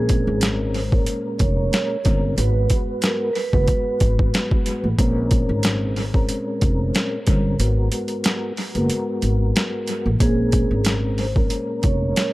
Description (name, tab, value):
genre	hip hop, boom-bap hip-hop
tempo	92 BPM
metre	4/4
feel	swing 54% on 16ths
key	Bb phrygian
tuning	A4 = 441 Hz
part	vibraphone with soft mallets	melody	0.0-4.3, 10.2-12.3 s	Ab4 to Db5	-26 LUFS	right 3 dB	high-pass filter, low-pass filter, analog delay
part	percussive tonewheel organ	accompaniment	0.0-12.3 s	Ab2 to Cb5	-25 LUFS	left 1 dB	chorus vibrato, slow rotary speaker, cassette tape, high-pass filter, low-pass filter, analog delay
part	upright bass	bass	0.0-12.1 s	F1 to Bb1	-21 LUFS	equal	none
part	boom bap sampler-style drum kit	drums	0.1-12.3 s	hi-hat, kick drum, snare drum	-21 LUFS	equal	overdrive, analog delay
room	light reverb, small room ambience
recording	echo-heavy mix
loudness	-18 LUFS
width	side -18 dB against mid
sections	0.0-12.3 A section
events	kick muted 7.6-10.2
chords	0.0 Bbm9; 2.4 Abm7; 5.0 Bbm9; 7.6 Abm9; 10.2 Bbm9